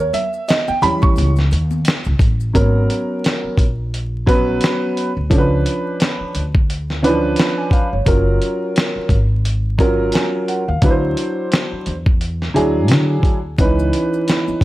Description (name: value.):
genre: hip hop, jazz-hop.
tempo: 87 BPM.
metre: 4/4.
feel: swing 58% on 16ths.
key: unclear.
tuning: A4 = 442 Hz.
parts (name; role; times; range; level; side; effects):
dark grand piano; accompaniment; 0.0-14.6 s; E3 to C#6; -18 LUFS; right 1 dB; none.
upright bass; bass; 0.0-14.6 s; F#1 to D3; -19 LUFS; equal; none.
dusty soul sampler-style drum kit; drums; 0.1-14.6 s; hi-hat, kick drum, snare drum; -17 LUFS; equal; vintage 12-bit sampler grit.
congas and maracas; percussion; 0.1-2.5, 13.6-14.6 s; none; -31 LUFS; left 7 dB; none.
room: light reverb.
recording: dark, warm production, vinyl crackle.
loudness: -14 LUFS.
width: side -16 dB against mid.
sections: 0.0-2.5 A section; 2.5-14.6 B section.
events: grand piano solo 0.0-2.5.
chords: 0.0 D#7b9; 2.5 G#m11 (rootless); 5.3 C#7b9; 8.1 F#maj7; 10.8 D9; 13.6 C#m9.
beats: 0.48 1.17 1.86 | 2.55 3.24 3.93 4.62 | 5.31 6.00 6.69 7.38 | 8.07 8.76 9.45 10.13 | 10.82 11.51 12.20 12.89 | 13.58 14.27.